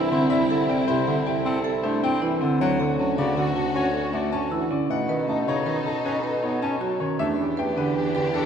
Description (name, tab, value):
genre	classical, minimalist pattern music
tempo	157 BPM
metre	6/4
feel	straight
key	unclear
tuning	A4 = 440 Hz
part	warm soprano saxophone	second line	0.0-8.5 s	D#4 to G4	-30 LUFS	right 1 dB	none
part	clear bass clarinet	accompaniment	0.0-8.5 s	C3 to D4	-28 LUFS	equal	none
part	clear studio violin section	sustained chords	0.0-8.5 s	C4 to A4	-34 LUFS	left 3 dB	none
part	marimba with medium mallets	arpeggios	0.0-8.5 s	C4 to B4	-26 LUFS	right 2 dB	none
part	warm bassoon	bass	0.0-8.5 s	C2 to B2	-29 LUFS	equal	none
part	bright grand piano	melody	0.1-8.5 s	A4 to A5	-31 LUFS	left 7 dB	none
room	wet scoring stage reverb, RT60 1.9 s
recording	heard from further back in the room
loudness	-21 LUFS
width	side -8 dB against mid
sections	0.0-7.2 A section; 7.2-8.5 B section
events	none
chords	0.0 C6; 2.6 Dmaj7; 4.9 B7; 7.2 Em7